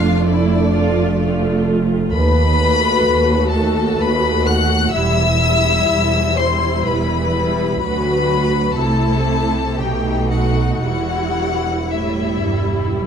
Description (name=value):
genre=classical, slow romantic movement for string orchestra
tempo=56-66 BPM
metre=3/4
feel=rubato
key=E minor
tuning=A4 = 441 Hz
part: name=rich chamber violin section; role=melody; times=0.0-13.0 s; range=D5 to F#6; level=-22 LUFS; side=left 5 dB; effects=none
part: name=warm studio violin section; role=second line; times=0.0-12.9 s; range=D4 to F#5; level=-22 LUFS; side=left 4 dB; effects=none
part: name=clear symphonic viola section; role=accompaniment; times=0.0-13.1 s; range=F#3 to F#4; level=-21 LUFS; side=right 2 dB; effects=none
part: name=rich chamber cello section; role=bass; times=0.0-13.1 s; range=D2 to C3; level=-21 LUFS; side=right 2 dB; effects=none
part: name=rich chamber double bass section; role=bass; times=0.0-13.1 s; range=E1 to D#2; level=-21 LUFS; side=right 2 dB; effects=none
room=moderate recital hall reverb, RT60 1.6 s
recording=close, detailed microphones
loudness=-14 LUFS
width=side -7 dB against mid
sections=0.0-13.1 A section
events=none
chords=0.0 Dm/F; 2.1 B7/D#; 4.9 Em; 7.8 Bm/D; 8.8 Am/C; 9.8 B7; 10.8 Em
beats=0.27 1.20 | 2.13 3.06 4.00 | 4.95 5.89 6.87 | 7.83 8.79 9.80 | 10.85 11.91 12.97